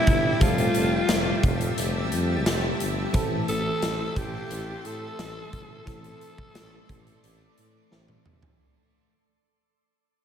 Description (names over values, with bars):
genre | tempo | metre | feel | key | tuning
1980s-style pop | 88 BPM | 4/4 | straight | A minor | A4 = 440 Hz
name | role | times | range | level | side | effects
breathy alto saxophone | melody | 0.0-7.2 s | E4 to A4 | -28 LUFS | equal | digital delay
FM electric piano | accompaniment | 0.0-8.6 s | E3 to A4 | -32 LUFS | left 2 dB | chorus, phaser, slapback echo
overdriven electric guitar | accompaniment | 0.0-9.1 s | F2 to A3 | -38 LUFS | equal | lush chorus, slapback echo
shimmering ambient pad | sustained chords | 0.0-8.6 s | G4 to C6 | -34 LUFS | left 1 dB | chorus, built-in reverb
mellow tuba | bass | 0.1-8.5 s | F1 to A2 | -30 LUFS | equal | none
big rock drum kit | drums | 0.1-8.6 s | hi-hat, kick drum, snare drum, tambourine, toms | -26 LUFS | equal | none
room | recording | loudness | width
moderate lush hall reverb, RT60 1.9 s, small room ambience | big arena sound | -22 LUFS | side -8 dB against mid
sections
0.0-8.6 A section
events
fade-out 0.0-8.6; drum fill 7.9-8.6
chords
0.0 Fadd9; 3.1 Am